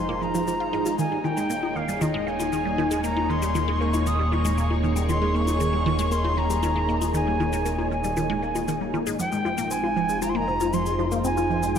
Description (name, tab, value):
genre	ambient, sequencer-driven space music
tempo	117 BPM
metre	4/4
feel	straight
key	unclear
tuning	A4 = 439 Hz
part	silver concert flute	melody	0.0-11.8 s	Eb5 to Eb6	-28 LUFS	equal	ping-pong delay
part	string machine, full ensemble	sustained chords	0.0-11.8 s	Ab3 to Db5	-28 LUFS	equal	phaser, ensemble chorus
part	fat analog bass	bass	0.0-11.8 s	Eb1 to F1	-28 LUFS	equal	none
part	resonant blip pluck	riff	0.1-11.8 s	Eb3 to F4	-28 LUFS	equal	phaser, ping-pong delay
part	bongos and shaker	percussion	0.3-11.8 s	none	-33 LUFS	left 5 dB	none
part	twinkling granular texture	texture	9.7-11.8 s	Eb5	-50 LUFS	right 4 dB	none
room	wet lush hall reverb, RT60 2.5 s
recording	none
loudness	-22 LUFS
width	side -8 dB against mid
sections	0.0-9.2 A section; 9.2-11.8 B section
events	none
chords	0.0 Fm7; 1.0 Eb7sus4; 9.2 Fm7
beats	0.48 | 0.99 1.50 2.01 2.53 | 3.04 3.55 4.07 4.58 | 5.09 5.60 6.12 6.63 | 7.14 7.66 8.17 8.68 | 9.19 9.71 10.22 10.73 | 11.24 11.76